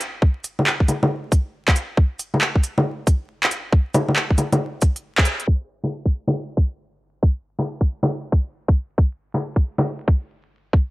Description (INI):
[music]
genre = future garage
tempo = 137 BPM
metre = 4/4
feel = swing 65% on 16ths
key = none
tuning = none
[part]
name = organic electronic drum kit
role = drums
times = 0.0-9.8 s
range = bongos, cabasa, handclaps, hi-hat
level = -20 LUFS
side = equal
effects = overdrive, low-pass filter on hats, low-pass filter on snare, low-pass filter on perc, low-pass filter on room
[part]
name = electronic kick drum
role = drums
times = 0.2-10.8 s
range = none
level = -16 LUFS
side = equal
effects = none
[sound]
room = light reverb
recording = vinyl crackle, low-pass filter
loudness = -19 LUFS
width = side -20 dB against mid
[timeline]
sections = 0.0-5.5 A section; 5.5-10.9 B section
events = band accent 5.2; filter sweep on drum 5.5-10.9; filter sweep 5.5-10.9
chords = none